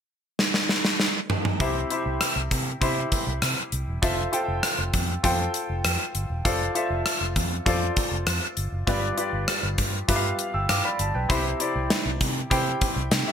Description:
1980s-style pop; 99 BPM; 4/4; straight; C major; A4 = 440 Hz
gated 80s drum kit; drums; 0.4-13.3 s; hi-hat, kick drum, rim click, snare drum, toms; -24 LUFS; equal
clear concert grand piano; accompaniment; 1.6-13.3 s; G2 to E6; -27 LUFS; left 1 dB; analog chorus
vintage muted fingered electric bass; bass; 1.6-13.2 s; E1 to C3; -29 LUFS; equal
light reverb, small room ambience; bright 1980s-style digital production; -22 LUFS; side -8 dB against mid
0.0-1.6 A section; 1.6-13.3 B section
drum fill 0.4-1.6
0.0 N.C.; 1.6 C; 4.0 Fmaj7; 6.5 Dm7/F; 8.9 G7; 11.3 C
0.39 1.00 | 1.60 2.21 2.81 3.42 | 4.03 4.63 5.24 5.84 | 6.45 7.06 7.66 8.27 | 8.88 9.48 10.09 10.69 | 11.30 11.91 12.51 13.12

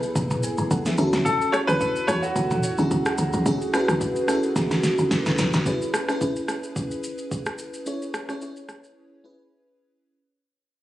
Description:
amapiano; 109 BPM; 4/4; swing 55% on 16ths; A4 = 443 Hz
FM electric piano with soft pad layer; accompaniment; 0.0-10.1 s; B3 to G#5; -26 LUFS; equal; chorus
woody log drum bass; bass; 0.0-5.6 s; F#1 to E2; -26 LUFS; equal
smooth R&B drum kit; drums; 0.0-9.0 s; kick drum, rim click, shaker, snare drum, toms; -27 LUFS; equal; vintage 12-bit sampler grit
clear grand piano; melody; 1.2-5.1 s; F#4 to C#5; -26 LUFS; equal; digital delay
light reverb; recorded on a phone in the room, club reverb, compression; -21 LUFS; side -14 dB against mid
0.0-5.7 A section; 5.7-10.1 B section
drum fill 4.6-5.7; fade-out 5.7-10.1; break 9.0-10.1
0.0 F#m11; 1.0 Dmaj9; 5.7 C#m7
0.16 0.71 | 1.26 1.81 2.36 2.91 | 3.46 4.01 4.56 5.11 | 5.66 6.21 6.76 7.31 | 7.86 8.41 8.96 9.51

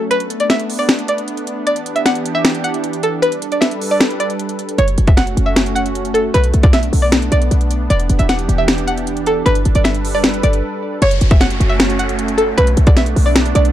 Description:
hip hop, trap; 154 BPM; 4/4; half-time; F# phrygian; A4 = 440 Hz
string-like resonator pluck; melody; 0.0-13.7 s; A4 to F#5; -18 LUFS; equal; chorus, low-pass filter, tape echo
warm analog pad; sustained chords; 0.0-13.7 s; E3 to B4; -22 LUFS; right 1 dB; chorus
trap drum kit; drums; 0.1-13.7 s; finger snaps, hi-hat, kick drum, snare drum; -15 LUFS; equal
short 808-style bass; bass; 4.8-13.7 s; E1 to B1; -16 LUFS; equal
downlifter; sound effects; 11.0-13.7 s; -27 LUFS; equal
digital ambience; dark, warm production; -13 LUFS; side -12 dB against mid
0.0-11.0 A section; 11.0-13.7 B section
break 0.0-4.8, 10.6-11.0
0.1 Bm7; 1.7 Em7; 3.2 Gadd9; 4.8 F#m; 6.3 Bm7; 7.9 Em7; 9.5 Gadd9; 11.0 F#m; 12.6 Bm7
| 0.11 0.50 0.89 1.28 | 1.67 2.06 2.45 2.84 | 3.23 3.62 4.01 4.39 | 4.79 5.17 5.56 5.95 | 6.34 6.73 7.12 7.51 | 7.90 8.29 8.68 9.07 | 9.46 9.85 10.24 10.63 | 11.02 11.41 11.80 12.19 | 12.58 12.97 13.36

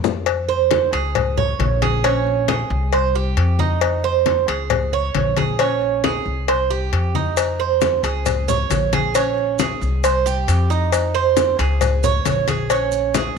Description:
latin, Cuban son and guajira; 135 BPM; 4/4; straight; F minor; A4 = 440 Hz
upright bass; bass; 0.0-13.3 s; Bb1 to F2; -22 LUFS; left 1 dB
bongos and cowbell; percussion; 0.0-13.4 s; -23 LUFS; left 12 dB
congas; percussion; 0.0-13.4 s; -24 LUFS; left 10 dB
maracas; percussion; 0.0-0.3, 7.4-13.4 s; -33 LUFS; right 10 dB
Cuban tres; arpeggios; 0.5-13.4 s; Db4 to Db5; -20 LUFS; right 11 dB
moderate echo chamber reverb, RT60 1.5 s, small room ambience; 1960s-style stereo with parts hard left and right; -16 LUFS; side -5 dB against mid
0.3-13.4 A section
drum fill 0.0
0.3 Fm; 1.2 Db5; 2.0 Bbm7; 2.9 Csus4; 3.8 Fm7; 4.7 Db5; 5.6 Bbm7; 6.5 Csus4; 7.4 Fm7; 8.3 Db5; 9.2 Bbm7; 10.0 Csus4; 10.9 Fm7; 11.8 Db5
| 0.26 0.71 1.15 1.60 | 2.04 2.48 2.93 3.37 | 3.82 4.26 4.71 5.15 | 5.60 6.04 6.49 6.93 | 7.37 7.82 8.26 8.71 | 9.15 9.60 10.04 10.48 | 10.93 11.37 11.81 12.26 | 12.70 13.15

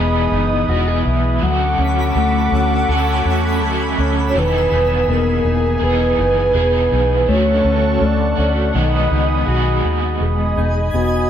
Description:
dream pop; 82 BPM; 4/4; straight; A4 = 440 Hz
soft octave-layered synth lead; melody; 0.0-11.3 s; F#4 to F#5; -20 LUFS; equal; chorus, tremolo, ping-pong delay
crunchy overdriven guitar; accompaniment; 0.0-10.7 s; D3 to G#4; -23 LUFS; right 2 dB; tremolo, analog chorus
warm analog pad; sustained chords; 0.0-11.3 s; G#3 to D#6; -24 LUFS; right 3 dB; chorus
mellow electric guitar; arpeggios; 0.0-11.3 s; D#3 to A4; -22 LUFS; left 4 dB; lush chorus, ping-pong delay
vintage muted fingered electric bass; bass; 0.0-11.3 s; E1 to E2; -19 LUFS; equal
twinkling granular texture; texture; 1.8-4.9, 10.6-11.3 s; G#5 to F#6; -29 LUFS; right 2 dB; built-in reverb, ping-pong delay
wet studio ambience, RT60 0.5 s; -14 LUFS; side -9 dB against mid
0.0-10.2 A section; 10.2-11.3 B section
0.0 Emaj7; 1.4 Dmaj7; 4.4 Emaj7; 7.3 Dmaj7; 8.7 B6; 10.2 Emaj7
0.70 | 1.43 2.16 2.89 3.62 | 4.36 5.09 5.82 6.55 | 7.28 8.01 8.74 9.48 | 10.21 10.94

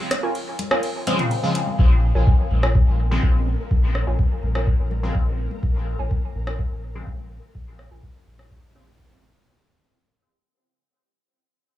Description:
dub techno; 125 BPM; 4/4; straight; Bb minor; A4 = 436 Hz
booming analog drum machine; drums; 0.1-8.5 s; hi-hat, ride cymbal, rim click; -27 LUFS; equal; dub echo
warbly dusty pluck; riff; 0.2-8.5 s; F4 to Ab5; -30 LUFS; right 2 dB; chorus, phaser, sidechain pumping, dub echo
electronic congas and toms; percussion; 0.6-5.6 s; -32 LUFS; left 3 dB; overdrive, sidechain pumping on perc, sidechain pumping on toms, dub echo
resonant sweep polysynth; stabs; 1.1-9.2 s; Db3 to C4; -28 LUFS; equal; chorus, phaser, sidechain pumping, dub echo
round analog bass; bass; 1.8-9.3 s; Bb1; -22 LUFS; left 1 dB; sidechain pumping
electronic kick drum; drums; 1.8-9.1 s; -19 LUFS; left 1 dB
flickering grainy texture; texture; 2.3-9.5 s; Bb3 to Bb4; -38 LUFS; left 2 dB; built-in reverb, sidechain pumping
digital ambience; dry, gritty hardware recording, studio ambience; -19 LUFS; side -14 dB against mid
0.0-1.8 A section; 1.8-9.5 B section
break 0.0-1.8; filter sweep on analog polysynth 0.0-1.8; fade-out 1.8-9.5; filter sweep on analog synth bass 1.8-9.5
0.0 Bbm7
0.35 0.83 1.31 | 1.79 2.27 2.75 3.23 | 3.71 4.19 4.67 5.15 | 5.63 6.11 6.59 7.07 | 7.55 8.03 8.51 8.99

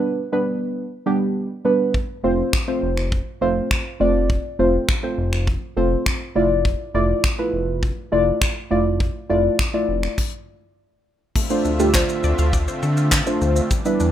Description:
dance-pop; 102 BPM; 4/4; straight; A4 = 440 Hz
deep mellow chord stab; accompaniment; 0.0-14.1 s; G3 to D5; -20 LUFS; equal; chorus, sidechain pumping, plate reverb
soft brush drum kit; drums; 1.9-14.1 s; crash cymbal, finger snaps, handclaps, hi-hat, kick drum, shaker, snare drum; -22 LUFS; equal
chorused synth bass; bass; 2.2-14.1 s; F1 to D3; -22 LUFS; equal; sidechain pumping
soft supersaw; sustained chords; 11.4-14.1 s; D3 to E5; -27 LUFS; equal; sidechain pumping, plate reverb
wide unison pluck; arpeggios; 11.4-14.1 s; G3 to F5; -32 LUFS; moving between left 7 dB and equal; auto-pan, sidechain pumping, tape echo, plate reverb
moderate studio reverb, RT60 0.6 s; rough home demo mix; -18 LUFS; side -11 dB against mid
0.0-11.4 A section; 11.4-14.1 B section
stop 10.2-11.4
0.0 G; 1.9 F; 6.4 Dmadd9/F; 11.4 Dm7
0.18 0.77 1.36 | 1.95 2.53 3.12 3.71 | 4.30 4.89 5.47 6.06 | 6.65 7.24 7.83 8.41 | 9.00 9.59 10.18 10.77 | 11.36 11.95 12.53 13.12 | 13.71

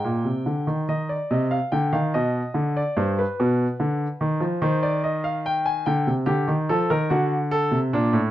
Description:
classical, baroque-style two-part invention for grand piano; 48 BPM (dotted quarters); 6/8; straight; C minor; A4 = 439 Hz
warm grand piano; solo; 0.0-8.3 s; G2 to Ab5; -21 LUFS; equal
light reverb; dark, warm production; -21 LUFS; side -13 dB against mid
0.9-8.3 A section
0.0 Eb; 0.9 Cm; 2.1 G/B; 3.4 Bdim; 4.6 Cm/Eb; 5.9 Gm; 7.1 D
| 0.89 2.15 | 3.39 4.63 | 5.87 7.10

